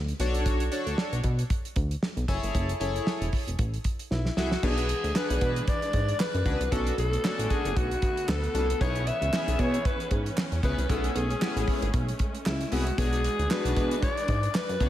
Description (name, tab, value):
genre	early-eighties boogie funk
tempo	115 BPM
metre	4/4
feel	swing 56% on 16ths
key	B dorian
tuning	A4 = 440 Hz
part	chorused synth bass	bass	0.0-14.9 s	E1 to B2	-28 LUFS	equal	none
part	damped 70s drum kit	drums	0.1-14.9 s	crash cymbal, hi-hat, kick drum, snare drum	-30 LUFS	equal	none
part	chorused polysynth	accompaniment	0.2-14.9 s	B3 to E5	-33 LUFS	left 2 dB	none
part	breathy alto saxophone	melody	4.1-14.9 s	E4 to E5	-31 LUFS	left 2 dB	tape echo
part	warm studio string section	sustained chords	4.6-14.9 s	D3 to D4	-37 LUFS	right 1 dB	none
part	group handclap	percussion	5.2-14.7 s	none	-42 LUFS	right 3 dB	none
room	moderate lush hall reverb, RT60 1.9 s, studio reverb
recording	dreamy mix soaked in reverb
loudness	-25 LUFS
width	side -12 dB against mid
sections	0.0-4.6 A section; 4.6-14.9 B section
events	drum fill 4.1-4.6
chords	0.2 Bm9; 2.3 F#m7; 4.6 E9/B; 6.7 Bm7; 8.8 C#m7/B; 10.9 Amaj7; 13.0 E9/B